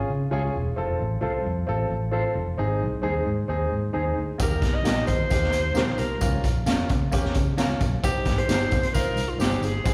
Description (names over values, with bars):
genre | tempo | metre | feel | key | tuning
uptempo 1960s-style soul | 132 BPM | 4/4 | straight | unclear | A4 = 439 Hz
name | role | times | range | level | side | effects
warm grand piano | accompaniment | 0.0-9.9 s | Bb3 to Ab5 | -31 LUFS | equal | slapback echo
fingered electric bass | bass | 0.0-9.9 s | Fb1 to Eb3 | -30 LUFS | equal | none
mellow electric guitar | stabs | 0.3-9.5 s | Db4 to Db5 | -36 LUFS | equal | harmonic tremolo, slapback echo
warm alto saxophone | melody | 4.4-9.9 s | F4 to Eb5 | -29 LUFS | equal | slapback echo
raw garage drum kit | drums | 4.4-9.9 s | hi-hat, kick drum, snare drum | -27 LUFS | equal | none
tambourine | percussion | 4.4-9.9 s | none | -44 LUFS | equal | none
room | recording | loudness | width
light reverb, studio ambience | live gig heard through the venue's PA, recital hall reverb | -25 LUFS | mono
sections
0.0-9.9 A section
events
grand piano fill 3.7-4.4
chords
0.0 Db; 0.8 F; 2.6 Ab; 4.4 Eb; 6.2 Bbm; 8.0 Cm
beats
0.32 | 0.78 1.23 1.68 2.13 | 2.59 3.04 3.49 3.95 | 4.40 4.86 5.31 5.76 | 6.22 6.67 7.13 7.58 | 8.04 8.49 8.95 9.40 | 9.86